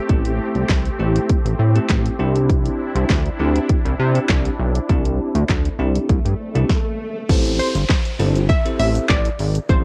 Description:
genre	dance-pop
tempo	100 BPM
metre	4/4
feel	straight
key	A minor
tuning	A4 = 440 Hz
part	filtered supersaw swell	sustained chords	0.0-6.7 s	A3 to G4	-31 LUFS	equal	sidechain pumping, cassette tape
part	bell-like tine electric piano	accompaniment	0.1-9.8 s	A3 to C5	-26 LUFS	equal	sidechain pumping, cassette tape
part	chorused synth bass	bass	0.1-9.8 s	G1 to C3	-21 LUFS	equal	sidechain pumping
part	house drum kit	drums	0.1-9.8 s	crash cymbal, handclaps, hi-hat, kick drum, shaker, snare drum	-21 LUFS	equal	cassette tape
part	swell and downlifter	sound effects	5.7-9.8 s	none	-33 LUFS	equal	none
part	glassy wavetable pluck	melody	7.6-9.8 s	C5 to E5	-27 LUFS	equal	chorus, cassette tape
room	little or no reverb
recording	home recording on cassette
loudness	-19 LUFS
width	mono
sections	0.0-7.3 A section; 7.3-9.8 B section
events	swell 5.7-7.3; stop 6.7-7.3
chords	0.0 Am7; 2.2 Cadd9; 7.3 Am7

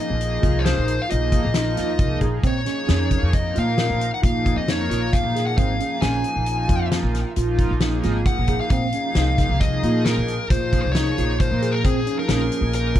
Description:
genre	progressive instrumental, band music in an uneven meter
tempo	134 BPM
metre	7/4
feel	straight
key	Bb minor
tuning	A4 = 440 Hz
part	smooth overdriven lead guitar	melody	0.0-13.0 s	Ab4 to Ab5	-26 LUFS	left 4 dB	tape echo
part	chorused pulse-width pad	accompaniment	0.0-13.0 s	F3 to Bb4	-28 LUFS	right 1 dB	none
part	bright tine electric piano	arpeggios	0.0-13.0 s	C4 to Ab4	-28 LUFS	right 3 dB	medium stereo tremolo, tape echo
part	upright bass	bass	0.1-13.0 s	Ab1 to Bb2	-23 LUFS	equal	none
part	loose indie drum kit	drums	0.2-13.0 s	hi-hat, kick drum, snare drum	-23 LUFS	equal	none
room	little or no reverb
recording	dark, warm production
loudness	-18 LUFS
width	side -12 dB against mid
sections	0.0-13.0 A section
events	none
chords	0.0 Fm7/Bb; 2.4 Bbm7; 8.7 Fm7/Bb

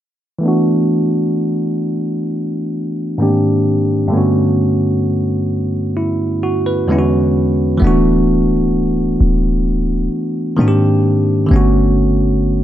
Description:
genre	R&B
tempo	65 BPM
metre	4/4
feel	straight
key	unclear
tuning	A4 = 440 Hz
part	bell-like tine electric piano	accompaniment	0.4-12.6 s	E2 to B4	-14 LUFS	equal	none
part	clean 808-style bass	bass	7.8-12.6 s	C#1 to G#2	-16 LUFS	equal	none
room	moderate plate reverb, RT60 2.6 s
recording	low-pass filter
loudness	-13 LUFS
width	side -12 dB against mid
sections	0.4-7.8 A section; 7.8-12.6 B section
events	filter sweep 0.4-7.8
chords	0.4 D69; 3.2 G#maj9#11; 4.1 Gmaj9#11; 6.9 E13; 7.8 D69; 10.6 G#maj9#11; 11.5 Gmaj9#11

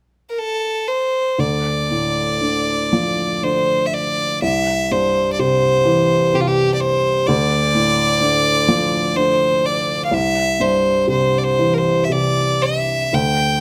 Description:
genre	celtic folk, Celtic slow air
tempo	58-65 BPM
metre	3/4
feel	rubato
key	D minor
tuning	A4 = 440 Hz
part	clear fiddle	melody	0.3-13.6 s	F4 to G5	-19 LUFS	equal	none
part	warm upright piano	accompaniment	1.4-13.6 s	C2 to F3	-22 LUFS	equal	none
room	light reverb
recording	close, detailed microphones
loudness	-18 LUFS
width	mono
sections	0.0-1.4 A section; 1.4-13.6 B section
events	none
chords	0.0 N.C.; 1.4 Dm; 4.4 C; 7.3 Dm; 10.1 C

